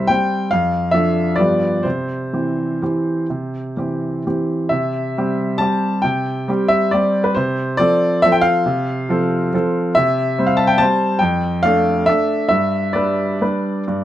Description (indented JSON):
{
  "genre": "classical, piano waltz",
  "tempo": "121-150 BPM",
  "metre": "3/4",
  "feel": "rubato",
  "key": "C major",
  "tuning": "A4 = 440 Hz",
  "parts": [
    { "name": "clear baby grand piano", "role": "solo", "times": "0.0-14.0 s", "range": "C2 to A5", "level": "-16 LUFS", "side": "equal", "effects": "none" }
  ],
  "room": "light reverb",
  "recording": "close, detailed microphones",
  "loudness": "-16 LUFS",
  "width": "side -12 dB against mid",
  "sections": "0.0-4.7 A section; 4.7-14.0 A section",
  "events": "none",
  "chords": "0.0 C; 0.5 Dm/F; 1.4 G7; 1.8 C; 7.4 F/C; 10.0 C; 11.2 Dm/F; 12.5 G",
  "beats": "0.09 | 0.51 0.93 1.38 | 1.84 2.32 2.81 | 3.29 3.76 4.25 | 4.72 5.16 5.60 | 6.05 6.49 6.94 | 7.37 7.79 8.23 | 8.67 9.10 9.53 | 9.96 10.38 10.80 | 11.22 11.64 12.07 | 12.50 12.95 13.42 | 13.87"
}